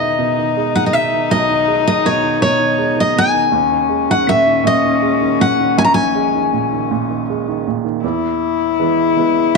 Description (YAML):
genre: acoustic folk-pop ballad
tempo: 54 BPM (dotted quarters)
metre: 6/8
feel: straight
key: unclear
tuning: A4 = 440 Hz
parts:
  - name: picked steel-string acoustic guitar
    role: melody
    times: 0.0-9.6 s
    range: C#5 to A#5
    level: -15 LUFS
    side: left 1 dB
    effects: none
  - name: warm cello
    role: second line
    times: 0.0-9.6 s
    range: C#4 to E4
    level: -18 LUFS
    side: left 10 dB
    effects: none
  - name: warm upright piano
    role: accompaniment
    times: 0.0-9.6 s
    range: A#1 to B3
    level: -20 LUFS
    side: right 12 dB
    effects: none
room: moderate echo chamber reverb, RT60 1.9 s, small room ambience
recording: 1960s-style stereo with parts hard left and right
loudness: -13 LUFS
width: side -3 dB against mid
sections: 0.0-8.0 A section; 8.0-9.6 B section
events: none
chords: 0.0 Emaj7; 3.5 D#7sus4; 8.0 E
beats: 0.19 | 1.31 2.43 | 3.55 4.67 | 5.78 6.90 | 8.03 9.16